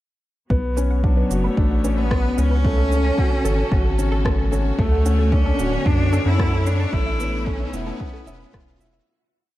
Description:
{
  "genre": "piano and strings electronica",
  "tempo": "112 BPM",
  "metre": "4/4",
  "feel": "straight",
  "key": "B dorian",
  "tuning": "A4 = 441 Hz",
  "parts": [
    { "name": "clear studio string section", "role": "sustained chords", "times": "0.5-9.1 s", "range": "C#3 to C#5", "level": "-34 LUFS", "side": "left 1 dB", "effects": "sidechain pumping, low-pass filter, shimmer reverb" },
    { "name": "analog pluck", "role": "arpeggios", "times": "0.5-9.0 s", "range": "A4 to B5", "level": "-34 LUFS", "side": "right 2 dB", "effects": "chorus, phaser, sidechain pumping, tape echo, shimmer reverb" },
    { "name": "felt-muted upright piano", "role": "riff", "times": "0.5-9.1 s", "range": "A3 to A4", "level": "-26 LUFS", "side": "left 1 dB", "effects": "shimmer reverb" },
    { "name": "round analog bass", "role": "bass", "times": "0.5-9.0 s", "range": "D1 to F#2", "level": "-21 LUFS", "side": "equal", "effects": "sidechain pumping" },
    { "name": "electronic kick drum", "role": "drums", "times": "0.5-8.6 s", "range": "none", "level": "-22 LUFS", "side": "equal", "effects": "none" },
    { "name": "riser", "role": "sound effects", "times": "3.3-9.1 s", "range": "none", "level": "-36 LUFS", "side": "right 1 dB", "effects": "none" },
    { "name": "electronic shaker and rim click", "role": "drums", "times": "0.8-8.9 s", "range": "none", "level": "-32 LUFS", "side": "equal", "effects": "none" },
    { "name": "bright cello", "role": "melody", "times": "1.0-8.8 s", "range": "F#3 to E4", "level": "-26 LUFS", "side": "equal", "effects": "shimmer reverb" }
  ],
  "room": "light reverb, digital ambience",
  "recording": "none",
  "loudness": "-17 LUFS",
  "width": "side -15 dB against mid",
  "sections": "0.5-9.1 build",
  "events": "build-up 0.5-9.1; filter sweep on synth arpeggio sound 0.5-9.1; fade-out 6.2-9.1",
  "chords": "0.5 Bmadd9; 2.6 F#m; 4.8 Dmaj7; 6.9 Aadd9",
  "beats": "| 0.51 1.04 1.58 2.11 | 2.65 3.18 3.72 4.25 | 4.79 5.33 5.86 6.40 | 6.93 7.47 8.01 8.54"
}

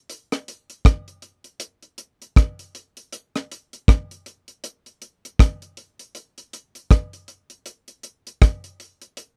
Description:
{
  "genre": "reggae",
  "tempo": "79 BPM",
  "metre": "4/4",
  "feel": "swing 60% on 16ths",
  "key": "none",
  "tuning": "none",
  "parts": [
    { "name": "deep reggae drum kit", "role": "drums", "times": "0.1-9.4 s", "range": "hi-hat, kick drum, rim click", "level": "-18 LUFS", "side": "equal", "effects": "none" }
  ],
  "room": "little or no reverb",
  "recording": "dry, close 1970s-style studio recording",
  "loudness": "-21 LUFS",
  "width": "mono",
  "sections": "0.1-9.4 A section",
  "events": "none",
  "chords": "none",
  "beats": "| 0.09 0.85 1.61 2.37 | 3.12 3.88 4.64 5.39 | 6.15 6.91 7.66 8.42 | 9.18"
}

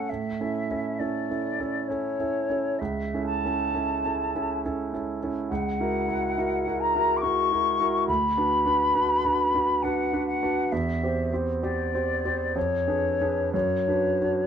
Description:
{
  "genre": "classical, romantic duo for flute and grand piano",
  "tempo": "59-71 BPM",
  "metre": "3/4",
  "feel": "rubato",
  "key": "B minor from 5.5 s",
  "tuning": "A4 = 440 Hz",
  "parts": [
    { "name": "mellow hollow silver concert flute", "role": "melody", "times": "0.0-14.5 s", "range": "C#5 to D6", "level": "-26 LUFS", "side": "left 3 dB", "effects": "none" },
    { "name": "clear concert grand piano", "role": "accompaniment", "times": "0.0-14.5 s", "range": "C#2 to C5", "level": "-27 LUFS", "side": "right 3 dB", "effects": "none" }
  ],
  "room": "moderate studio reverb, RT60 0.6 s",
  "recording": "dark, warm production",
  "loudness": "-23 LUFS",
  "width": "side -8 dB against mid",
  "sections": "0.0-14.5 A section",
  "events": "none",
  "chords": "0.1 A; 2.8 A/C#; 5.5 F#7/C#; 8.1 Bm/D; 10.7 C/E; 12.6 Fdim7; 13.5 Bm/F#",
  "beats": "| 0.09 0.99 1.88 | 2.79 3.74 4.63 | 5.50 6.37 7.23 | 8.08 8.94 9.82 | 10.71 11.62 12.55 | 13.54"
}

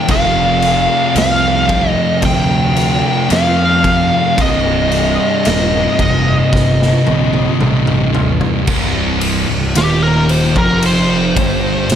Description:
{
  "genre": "stoner and doom metal",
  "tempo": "56 BPM",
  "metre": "4/4",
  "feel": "straight",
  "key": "C minor",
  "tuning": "A4 = 440 Hz",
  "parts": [
    { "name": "fuzz lead guitar", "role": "melody", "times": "0.0-12.0 s", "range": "G4 to G5", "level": "-16 LUFS", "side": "equal", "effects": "wah, distortion, analog delay" },
    { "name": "fuzz guitar", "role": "riff", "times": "0.0-12.0 s", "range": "C2 to F3", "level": "-22 LUFS", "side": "right 1 dB", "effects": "none" },
    { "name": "thick fuzz guitar", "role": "riff", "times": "0.0-12.0 s", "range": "C2 to F3", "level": "-18 LUFS", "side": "left 8 dB", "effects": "distortion" },
    { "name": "thick fuzz guitar", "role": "riff", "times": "0.0-12.0 s", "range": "C2 to F3", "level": "-19 LUFS", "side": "right 9 dB", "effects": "distortion" },
    { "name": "fuzz picked electric bass", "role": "bass", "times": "0.1-12.0 s", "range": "C1 to F2", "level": "-20 LUFS", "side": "equal", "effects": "overdrive" },
    { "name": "raw garage drum kit", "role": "drums", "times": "0.1-12.0 s", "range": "crash cymbal, kick drum, ride cymbal, snare drum, toms", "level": "-18 LUFS", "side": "equal", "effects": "none" }
  ],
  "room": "moderate large studio reverb, RT60 1.0 s",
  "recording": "none",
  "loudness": "-11 LUFS",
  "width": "side -9 dB against mid",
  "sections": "0.0-8.7 A section; 8.7-12.0 B section",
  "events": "drum fill 6.5-8.7; lead electric guitar solo 8.7-12.0",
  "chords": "0.1 F5; 4.4 Cm",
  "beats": "| 0.09 1.17 2.24 3.31 | 4.38 5.46 6.53 7.60 | 8.68 9.75 10.83 11.90"
}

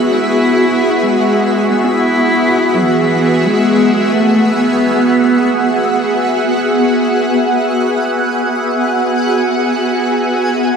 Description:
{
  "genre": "ambient",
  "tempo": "free time",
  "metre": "none",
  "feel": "none",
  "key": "unclear",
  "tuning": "A4 = 439 Hz",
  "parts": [
    { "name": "warm cello", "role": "melody", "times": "0.0-5.9 s", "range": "E3 to F#4", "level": "-16 LUFS", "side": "right 1 dB", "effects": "diffuse ambient delay" },
    { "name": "shimmering ambient pad", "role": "sustained chords", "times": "0.0-10.8 s", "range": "B3 to F#5", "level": "-13 LUFS", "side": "equal", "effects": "chorus, built-in reverb, phaser" },
    { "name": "organ-like drone", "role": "drone", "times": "0.0-6.5 s", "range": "B3 to F#4", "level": "-20 LUFS", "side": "left 1 dB", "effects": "ensemble chorus, built-in reverb" },
    { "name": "twinkling granular texture", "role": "texture", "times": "0.0-10.8 s", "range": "E5 to G#5", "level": "-26 LUFS", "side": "left 1 dB", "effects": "built-in reverb" }
  ],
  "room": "wet huge ambient reverb, RT60 7.8 s",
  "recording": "none",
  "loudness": "-11 LUFS",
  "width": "side -6 dB against mid",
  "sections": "0.0-6.4 A section; 6.4-10.8 B section",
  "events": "fade-out on synth texture 0.0-6.4",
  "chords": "0.0 Eadd9",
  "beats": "free time"
}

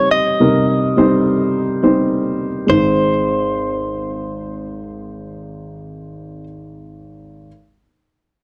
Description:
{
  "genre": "pop",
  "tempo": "105 BPM",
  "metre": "4/4",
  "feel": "straight",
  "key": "Ab major",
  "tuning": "A4 = 440 Hz",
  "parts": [
    { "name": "direct-recorded clean electric guitar", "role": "melody", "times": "0.0-6.4 s", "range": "C5 to Eb5", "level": "-21 LUFS", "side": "equal", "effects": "none" },
    { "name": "dark upright piano", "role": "accompaniment", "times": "0.0-7.5 s", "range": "Ab1 to C5", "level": "-19 LUFS", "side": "equal", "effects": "none" }
  ],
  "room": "wet studio reverb, RT60 0.5 s",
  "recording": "dark, warm production",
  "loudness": "-16 LUFS",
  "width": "mono",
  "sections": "0.0-2.7 A section; 2.7-5.0 B section",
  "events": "none",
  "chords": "0.0 Cm; 2.7 Ab",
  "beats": "| 0.40 0.97 1.54 2.11 | 2.68 3.25 3.83 4.40"
}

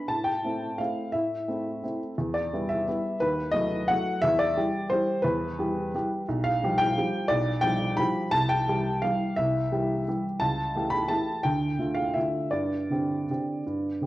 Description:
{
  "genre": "classical, piano waltz",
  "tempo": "158-188 BPM",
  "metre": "3/4",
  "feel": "rubato",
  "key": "unclear",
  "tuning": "A4 = 440 Hz",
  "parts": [
    { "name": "dark upright piano", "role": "solo", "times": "0.0-14.1 s", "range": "B1 to B5", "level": "-24 LUFS", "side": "equal", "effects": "none" }
  ],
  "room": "moderate recital hall reverb, RT60 1.6 s",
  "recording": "worn, warbling old tape, cassette tape, warbly pitch drift",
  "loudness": "-24 LUFS",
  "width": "side -16 dB against mid",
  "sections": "0.0-14.1 A section",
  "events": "none",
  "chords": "0.1 Am; 2.2 Em; 3.2 B7/D#; 4.2 Em; 6.3 G7/B; 8.3 C; 10.4 A7/C#; 11.5 Dm; 12.5 Gsus4",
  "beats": "| 0.10 0.44 0.79 | 1.14 1.48 1.83 | 2.17 2.51 2.87 | 3.20 3.53 3.89 | 4.22 4.56 4.91 | 5.25 5.59 5.94 | 6.28 6.61 6.96 | 7.29 7.63 7.98 | 8.32 8.66 9.02 | 9.37 9.71 10.06 | 10.41 10.75 11.11 | 11.45 11.80 12.16 | 12.54 12.91 13.29 | 13.65 14.02"
}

